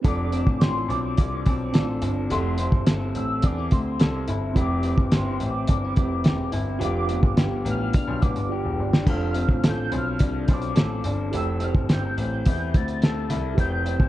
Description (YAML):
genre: indie pop, bedroom pop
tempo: 106 BPM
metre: 4/4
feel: straight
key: F lydian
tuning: A4 = 438 Hz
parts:
  - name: electric guitar through a small old amp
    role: accompaniment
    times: 0.0-14.1 s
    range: A2 to A4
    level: -30 LUFS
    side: left 3 dB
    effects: lush chorus, vibrato effect
  - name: mellow tine electric piano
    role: accompaniment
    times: 0.0-14.1 s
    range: C4 to G5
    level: -32 LUFS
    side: right 4 dB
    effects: medium stereo tremolo
  - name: clear concert grand piano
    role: bass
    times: 0.0-14.1 s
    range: E1 to E2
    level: -27 LUFS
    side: equal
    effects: none
  - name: cloth-damped thuddy drum kit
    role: drums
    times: 0.0-14.1 s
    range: hi-hat, kick drum, snare drum, splash cymbal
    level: -21 LUFS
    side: equal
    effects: vintage 12-bit sampler grit
  - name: warm velvety synth lead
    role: melody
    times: 0.1-14.1 s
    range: C6 to A6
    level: -32 LUFS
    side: left 2 dB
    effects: lush chorus, analog delay
room: studio reverb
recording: dark, warm production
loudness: -21 LUFS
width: side -15 dB against mid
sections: 0.1-14.1 A section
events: drum fill 8.5-9.1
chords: 0.1 F6; 2.3 Am7/F; 4.6 Cmaj7/F; 6.8 G7/F; 9.1 F6; 11.3 Am7/F; 13.6 Cmaj7/F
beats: | 0.05 0.62 1.18 1.74 | 2.31 2.87 3.43 4.00 | 4.56 5.12 5.69 6.25 | 6.81 7.38 7.94 8.50 | 9.07 9.63 10.19 10.76 | 11.32 11.88 12.45 13.01 | 13.58